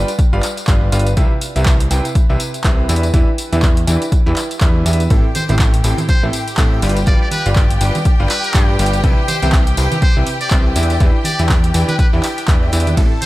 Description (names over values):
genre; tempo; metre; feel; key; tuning
piano house; 122 BPM; 4/4; swing 58% on 16ths; unclear; A4 = 440 Hz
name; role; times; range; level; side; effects
bright concert grand piano; riff; 0.0-13.1 s; A2 to G5; -22 LUFS; equal; sidechain pumping, diffuse ambient delay
plucky analog bass; bass; 0.0-13.1 s; G1 to A2; -16 LUFS; equal; sidechain pumping
punchy analog drum machine; drums; 0.1-13.3 s; handclaps, hi-hat, ride cymbal, tambourine; -23 LUFS; equal; none
electronic kick drum; drums; 0.2-13.1 s; none; -14 LUFS; equal; none
clear studio string section; sustained chords; 5.1-13.3 s; G4 to A5; -24 LUFS; left 1 dB; sidechain pumping
tambourine and congas; percussion; 5.1-13.3 s; none; -26 LUFS; right 2 dB; none
trumpet with metal mute; melody; 5.4-13.3 s; B4 to D5; -24 LUFS; equal; diffuse ambient delay
room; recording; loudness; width
light reverb, small room reverb; none; -12 LUFS; side -17 dB against mid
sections
0.0-13.3 A section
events
none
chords
0.0 G7; 1.2 Cmaj7; 2.9 Em7; 5.1 Am7; 6.8 G7; 9.0 Cmaj7; 10.8 Em7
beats
0.19 0.68 | 1.17 1.66 2.15 2.65 | 3.14 3.63 4.12 4.61 | 5.10 5.60 6.09 6.58 | 7.07 7.56 8.05 8.55 | 9.04 9.53 10.02 10.51 | 11.01 11.50 11.99 12.48 | 12.97